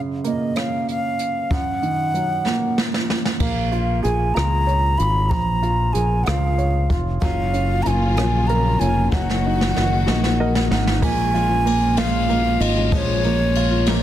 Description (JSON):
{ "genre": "six-eight pop ballad", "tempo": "63 BPM (dotted quarters)", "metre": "6/8", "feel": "straight", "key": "unclear", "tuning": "A4 = 440 Hz", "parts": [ { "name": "warm upright piano", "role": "accompaniment", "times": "0.0-14.0 s", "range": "F#2 to F#5", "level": "-25 LUFS", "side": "right 3 dB", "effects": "none" }, { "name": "jazz brush drum kit", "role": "drums", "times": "0.2-14.0 s", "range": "crash cymbal, hi-hat, kick drum, ride cymbal, rim click, snare drum", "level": "-24 LUFS", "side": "equal", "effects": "soft clipping on snare" }, { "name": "alto ocarina", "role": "melody", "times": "0.3-14.0 s", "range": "C#5 to B5", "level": "-23 LUFS", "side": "equal", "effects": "digital delay" }, { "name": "fingered electric bass", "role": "bass", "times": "3.4-14.0 s", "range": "E#1 to C#2", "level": "-21 LUFS", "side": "equal", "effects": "none" }, { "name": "warm symphonic string section", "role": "sustained chords", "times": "7.2-11.0 s", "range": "C#3 to F#4", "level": "-27 LUFS", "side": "left 1 dB", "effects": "none" }, { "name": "fingerpicked steel-string acoustic guitar", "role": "arpeggios", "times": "7.2-14.0 s", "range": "A#2 to F#4", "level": "-26 LUFS", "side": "left 6 dB", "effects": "none" } ], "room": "light reverb", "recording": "dense, heavily limited modern master", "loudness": "-17 LUFS", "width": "side -12 dB against mid", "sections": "0.0-3.4 A section; 3.4-11.0 B section; 11.0-14.0 C section", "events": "drum fill 2.5-3.4, 9.1-11.0; upright piano fill 10.1-11.0", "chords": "0.0 F#maj7; 1.5 D#m/F#; 3.4 A#m7; 7.2 F#maj7; 9.1 D#m/F#; 11.0 A#m7", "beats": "0.55 | 1.50 2.46 | 3.41 4.36 | 5.32 6.27 | 7.22 8.17 | 9.12 10.07 | 11.02 11.97 | 12.92 13.87" }